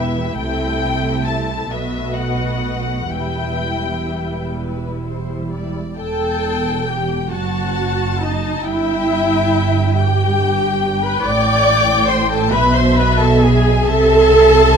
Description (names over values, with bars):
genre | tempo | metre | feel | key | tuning
classical, slow romantic movement for string orchestra | 41-48 BPM (dotted quarters) | 6/8 | rubato | E minor | A4 = 439 Hz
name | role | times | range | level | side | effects
warm symphonic violin section | melody | 0.0-14.8 s | E5 to A5 | -24 LUFS | left 6 dB | none
warm symphonic violin section | second line | 0.0-14.8 s | G4 to D6 | -22 LUFS | left 5 dB | none
warm symphonic viola section | accompaniment | 0.0-14.8 s | G3 to D5 | -18 LUFS | right 2 dB | none
rich studio double bass section | bass | 0.0-14.8 s | E1 to C2 | -21 LUFS | right 3 dB | none
warm studio cello section | bass | 0.0-14.8 s | E2 to C3 | -22 LUFS | right 2 dB | none
room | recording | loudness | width
light reverb | close, detailed microphones | -14 LUFS | side -6 dB against mid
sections
0.0-6.0 A section; 6.0-14.8 A section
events
none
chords
0.4 Am/C; 1.7 B7; 3.1 Em; 7.3 F#m6; 8.7 Em/G; 11.3 A7sus4; 12.5 E5/B; 13.9 Am/C